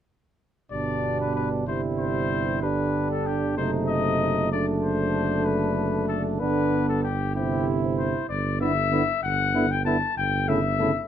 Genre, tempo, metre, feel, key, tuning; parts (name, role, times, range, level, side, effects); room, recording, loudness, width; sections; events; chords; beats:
classical, brass quintet; 64 BPM (dotted quarters); 6/8; straight; G major; A4 = 440 Hz
warm trumpet; melody; 0.7-11.1 s; G4 to A5; -28 LUFS; left 7 dB
warm flugelhorn; second line; 0.7-10.9 s; D4 to E4; -30 LUFS; right 6 dB
mellow trombone; accompaniment; 0.7-10.9 s; B2 to D3; -30 LUFS; right 3 dB
warm French horn; accompaniment; 0.7-10.9 s; G3 to C4; -30 LUFS; left 4 dB
dark tuba; bass; 0.7-10.9 s; F#1 to G1; -28 LUFS; right 3 dB
moderate large studio reverb, RT60 0.8 s; -22 LUFS; side -9 dB against mid
0.7-11.1 A section
0.7 G; 1.7 C/G; 2.6 G; 3.6 F#dim7; 4.5 D7/F#; 6.4 G; 7.4 C/G; 8.3 Em7/G; 10.2 A7/G
| 0.72 1.67 | 2.62 3.57 | 4.52 5.46 | 6.41 7.36 | 8.30 9.23 | 10.16